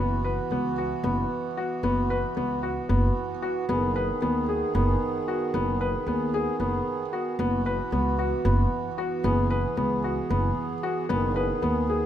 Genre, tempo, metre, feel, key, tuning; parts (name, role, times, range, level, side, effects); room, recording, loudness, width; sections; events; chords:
contemporary instrumental, chamber music in an uneven meter; 227 BPM (eighths); 7/8; straight; A4 = 439 Hz
hand-pumped harmonium; sustained chords; 0.0-12.1 s; D#3 to G#4; -30 LUFS; right 4 dB
felt-muted upright piano; arpeggios; 0.0-12.1 s; B3 to B4; -28 LUFS; left 3 dB
upright bass; bass; 0.0-12.0 s; F#1 to D#2; -27 LUFS; equal
light reverb; -24 LUFS; side -10 dB against mid
0.0-12.1 A section
0.0 F#7sus4; 3.7 G#m/F#; 7.4 F#7sus4; 11.1 G#m/F#